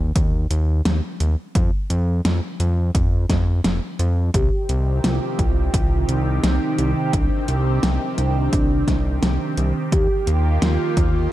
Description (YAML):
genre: synthwave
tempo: 86 BPM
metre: 4/4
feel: straight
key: C minor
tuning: A4 = 440 Hz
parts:
  - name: fat analog bass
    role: bass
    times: 0.0-11.3 s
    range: F1 to F2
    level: -20 LUFS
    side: equal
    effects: none
  - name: electronic kick drum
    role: drums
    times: 0.2-11.1 s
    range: none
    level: -21 LUFS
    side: equal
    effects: none
  - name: pop drum kit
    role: drums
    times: 0.2-11.1 s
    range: hi-hat, snare drum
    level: -25 LUFS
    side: equal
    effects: overdrive
  - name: warm velvety synth lead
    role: melody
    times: 4.3-11.3 s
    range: D4 to G4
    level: -26 LUFS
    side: right 1 dB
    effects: chorus, tape echo
  - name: lush unison pad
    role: sustained chords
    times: 4.3-11.3 s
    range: C3 to G4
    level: -26 LUFS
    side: right 1 dB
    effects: chorus, phaser, sidechain pumping
room: light reverb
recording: dark, warm production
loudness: -18 LUFS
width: side -14 dB against mid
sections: 0.0-11.3 A section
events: none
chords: 0.0 N.C.; 4.3 Cm; 9.9 Ebadd9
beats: 0.16 0.85 | 1.55 2.25 2.95 3.65 | 4.34 5.04 5.74 6.43 | 7.13 7.83 8.53 9.23 | 9.92 10.62 11.32